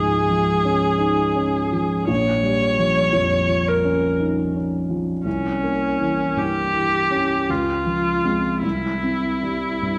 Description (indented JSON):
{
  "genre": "classical, romantic duo for viola and grand piano",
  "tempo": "50-59 BPM",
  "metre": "3/4",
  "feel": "rubato",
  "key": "unclear",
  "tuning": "A4 = 439 Hz",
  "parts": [
    { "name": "clear viola", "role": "melody", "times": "0.0-10.0 s", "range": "Db4 to Db5", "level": "-23 LUFS", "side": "equal", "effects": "none" },
    { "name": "dark baby grand piano", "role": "accompaniment", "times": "0.0-10.0 s", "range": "Bb1 to Eb4", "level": "-24 LUFS", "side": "equal", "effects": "none" }
  ],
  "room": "wet scoring stage reverb, RT60 1.9 s",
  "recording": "dark, warm production",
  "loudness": "-21 LUFS",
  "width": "mono",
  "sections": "0.0-10.0 A section",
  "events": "none",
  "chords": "0.0 Db; 2.1 Gm7b5/Bb; 5.3 C7b9; 7.5 Dbmaj7; 8.6 C",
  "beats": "0.99 | 2.09 3.15 4.20 | 5.26 6.38 7.49 | 8.63 9.82"
}